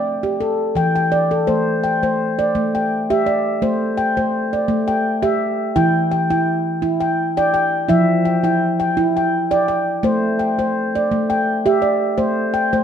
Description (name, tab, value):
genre	world meditative, meditative tuned percussion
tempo	84 BPM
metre	3/4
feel	swing 54% on 16ths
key	A minor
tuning	A4 = 442 Hz
part	handpan	solo	0.0-12.8 s	E3 to G5	-16 LUFS	equal	none
room	wet echo chamber reverb, RT60 1.5 s, small room ambience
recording	none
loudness	-16 LUFS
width	side -8 dB against mid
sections	0.0-1.5 A section; 1.5-12.8 B section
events	none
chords	0.0 A5; 1.5 Am; 5.8 Em; 7.9 Em7; 10.0 Am